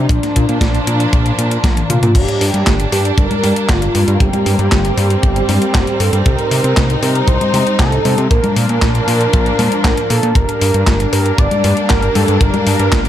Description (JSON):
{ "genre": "italo disco", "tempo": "117 BPM", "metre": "4/4", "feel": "straight", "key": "G minor", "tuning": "A4 = 440 Hz", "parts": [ { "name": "wide unison lead", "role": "melody", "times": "0.0-13.1 s", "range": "D4 to D5", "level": "-18 LUFS", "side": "right 2 dB", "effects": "digital delay" }, { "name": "rich studio string section", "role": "sustained chords", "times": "0.0-13.1 s", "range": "F3 to Eb4", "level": "-20 LUFS", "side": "left 1 dB", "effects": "none" }, { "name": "fat analog bass", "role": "bass", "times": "0.0-13.1 s", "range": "G1 to C3", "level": "-16 LUFS", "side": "equal", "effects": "none" }, { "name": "clean 12-bit digital drum machine", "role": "drums", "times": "0.1-13.1 s", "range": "congas, crash cymbal, handclaps, hi-hat, snare drum, toms", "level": "-18 LUFS", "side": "left 2 dB", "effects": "overdrive" }, { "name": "kick drum", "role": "drums", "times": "0.1-13.0 s", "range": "none", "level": "-17 LUFS", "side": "equal", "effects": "none" } ], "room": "little or no reverb", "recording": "none", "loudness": "-11 LUFS", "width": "side -11 dB against mid", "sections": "0.0-2.2 A section; 2.2-13.1 B section", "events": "drum fill 1.8-2.2", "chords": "0.1 Bb; 2.2 Gm; 6.3 Cm; 8.3 Bb; 10.4 Gm" }